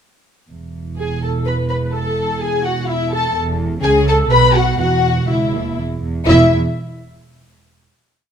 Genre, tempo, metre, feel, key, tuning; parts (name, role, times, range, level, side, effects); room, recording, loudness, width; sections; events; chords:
quick classical-period movement for string orchestra; 124 BPM; 3/4; straight; A4 = 441 Hz
dark chamber double bass section; bass; 0.5-6.5 s; E1 to C#2; -20 LUFS; right 2 dB
warm chamber cello section; bass; 0.5-6.6 s; C#2 to C#3; -22 LUFS; right 2 dB
dark symphonic violin section; melody; 1.0-6.6 s; E5 to B5; -19 LUFS; left 4 dB
warm chamber violin section; second line; 1.0-6.5 s; E4 to B4; -23 LUFS; left 3 dB
dark symphonic viola section; accompaniment; 1.0-6.6 s; E4 to B4; -20 LUFS; right 1 dB
moderate recital hall reverb, RT60 1.4 s; close, detailed microphones; -14 LUFS; side -8 dB against mid
0.5-6.3 A section; 6.3-7.7 final note
0.5 A5/E; 3.4 N.C.; 3.8 C#5; 4.3 B5; 4.8 Esus2; 6.3 N.C.